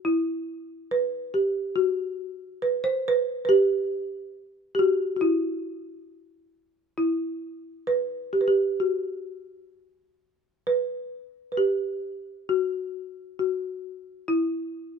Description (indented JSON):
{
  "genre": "japanese traditional, Japanese chamber music",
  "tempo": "68 BPM",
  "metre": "4/4",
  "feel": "rubato",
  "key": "E hirajoshi",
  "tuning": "A4 = 440 Hz",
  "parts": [
    { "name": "folk marimba with medium hard mallets", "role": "solo", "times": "0.0-15.0 s", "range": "E4 to C5", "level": "-24 LUFS", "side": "equal", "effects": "none" }
  ],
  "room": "light reverb",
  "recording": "close, detailed microphones",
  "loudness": "-24 LUFS",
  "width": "side -6 dB against mid",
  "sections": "0.0-15.0 A section",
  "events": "none",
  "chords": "none"
}